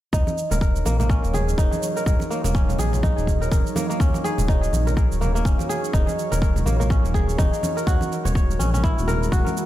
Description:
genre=afro house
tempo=124 BPM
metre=4/4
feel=swing 58% on 16ths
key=Eb minor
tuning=A4 = 438 Hz
part: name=dark analog pad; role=sustained chords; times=0.5-9.7 s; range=Gb3 to Db5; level=-31 LUFS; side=right 1 dB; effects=chorus, sidechain pumping
part: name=kora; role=arpeggios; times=0.1-9.7 s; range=Bb3 to Db5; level=-26 LUFS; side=equal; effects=sidechain pumping, dub echo
part: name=smooth synth bass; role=bass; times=0.1-9.4 s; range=Eb1 to Bb1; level=-23 LUFS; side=equal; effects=sidechain pumping
part: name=electronic kick drum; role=drums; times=0.1-9.4 s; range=none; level=-21 LUFS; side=equal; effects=none
part: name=shaker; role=drums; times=0.1-9.7 s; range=none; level=-36 LUFS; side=right 8 dB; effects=dub echo
part: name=congas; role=percussion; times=0.3-9.5 s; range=none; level=-29 LUFS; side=right 2 dB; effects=dub echo
room=little or no reverb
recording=echo-heavy mix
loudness=-19 LUFS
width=side -14 dB against mid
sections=0.1-9.7 A section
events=none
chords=0.1 Ebm7; 7.9 Gbadd9/Eb

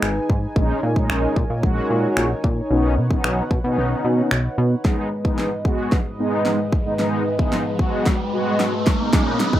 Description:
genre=dance-pop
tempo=112 BPM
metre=4/4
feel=straight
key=G# minor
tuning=A4 = 440 Hz
part: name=warm analog pad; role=sustained chords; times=0.0-9.6 s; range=G#2 to G#5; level=-26 LUFS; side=equal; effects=chorus, sidechain pumping
part: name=chorused synth bass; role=bass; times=0.0-4.8 s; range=G#1 to B2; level=-21 LUFS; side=equal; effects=sidechain pumping
part: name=pop drum kit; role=drums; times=0.0-9.6 s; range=finger snaps, hi-hat, kick drum, snare drum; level=-20 LUFS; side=equal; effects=none
part: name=mellow synth brass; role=accompaniment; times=0.6-9.6 s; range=A#2 to F#4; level=-23 LUFS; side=equal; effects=chorus, sidechain pumping
part: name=riser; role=sound effects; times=6.7-9.6 s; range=none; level=-27 LUFS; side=right 1 dB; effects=none
room=moderate small room reverb, RT60 0.5 s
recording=rough home demo mix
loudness=-18 LUFS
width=side -12 dB against mid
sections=0.0-4.8 A section; 4.8-9.6 B section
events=kick muted 3.8-4.8; build-up 4.8-9.6; drum fill 4.8-9.6; riser 6.7-9.6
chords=0.0 G#m; 0.6 D#7sus4/A#; 2.7 Badd9; 4.8 G#m

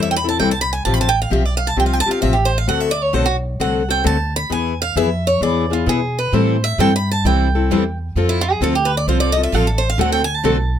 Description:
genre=acoustic string swing (jazz manouche)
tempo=131 BPM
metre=4/4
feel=swing 65% on 8ths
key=A minor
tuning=A4 = 442 Hz
part: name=picked swing-style acoustic guitar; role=melody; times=0.0-10.8 s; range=E4 to B5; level=-19 LUFS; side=right 2 dB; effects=none
part: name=picked steel-string acoustic guitar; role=accompaniment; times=0.0-10.6 s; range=C3 to A4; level=-19 LUFS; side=left 6 dB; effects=none
part: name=upright bass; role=bass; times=0.0-10.8 s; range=A1 to B2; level=-20 LUFS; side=equal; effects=none
part: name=picked steel-string acoustic guitar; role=accompaniment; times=6.3-10.6 s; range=D3 to A4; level=-23 LUFS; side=right 7 dB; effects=none
room=light reverb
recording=close, detailed microphones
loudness=-15 LUFS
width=side -9 dB against mid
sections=0.0-10.8 A section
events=steel-string acoustic guitar solo 0.0-10.8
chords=0.0 Am7; 0.9 Fadd9/A; 2.7 D7; 4.5 E; 6.3 Am7; 8.2 F; 10.0 D7

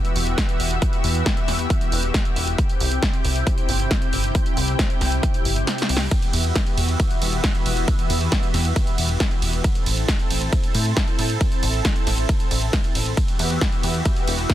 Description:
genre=uplifting trance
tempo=136 BPM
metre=4/4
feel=straight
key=E minor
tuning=A4 = 439 Hz
part: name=analog string pad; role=sustained chords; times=0.0-14.5 s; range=C3 to G5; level=-26 LUFS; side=equal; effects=ensemble chorus, sidechain pumping
part: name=punchy analog drum machine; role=drums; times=0.0-14.5 s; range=hi-hat, ride cymbal, snare drum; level=-26 LUFS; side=right 1 dB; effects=sidechain pumping on hats, sidechain pumping on cymbals
part: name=plucky analog bass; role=bass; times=0.2-14.5 s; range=E1 to A2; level=-22 LUFS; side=equal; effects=sidechain pumping
part: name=electronic kick drum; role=drums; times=0.4-14.5 s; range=none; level=-21 LUFS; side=equal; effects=overdrive
room=digital ambience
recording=dense, heavily limited modern master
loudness=-18 LUFS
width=side -13 dB against mid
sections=0.0-14.5 A section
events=kick drops out 5.7-6.1; drum fill 5.7-6.1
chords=0.0 Emadd9; 2.6 C; 6.1 Emadd9; 9.6 Am; 13.2 Emadd9

